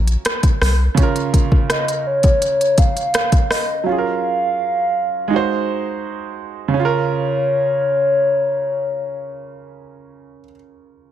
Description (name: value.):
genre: contemporary R&B.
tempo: 83 BPM.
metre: 4/4.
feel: straight.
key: Db major.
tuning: A4 = 440 Hz.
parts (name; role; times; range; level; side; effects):
hollow clarinet-like synth lead; melody; 0.0-10.4 s; Db5 to F5; -18 LUFS; left 1 dB; chorus, ping-pong delay.
clear concert grand piano; accompaniment; 0.0-11.1 s; Db3 to C5; -22 LUFS; right 6 dB; none.
rubbery square bass; bass; 0.0-0.9 s; Bb1 to C2; -15 LUFS; equal; none.
smooth R&B drum kit; drums; 0.1-3.7 s; hi-hat, kick drum, rim click; -16 LUFS; equal; none.
room: digital ambience.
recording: none.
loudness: -15 LUFS.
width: side -10 dB against mid.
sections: 0.0-6.8 A section; 6.8-9.7 B section.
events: none.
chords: 0.0 Gbmaj7; 1.0 Db6; 3.9 Gbmaj7; 5.3 Ab7; 6.8 Db6.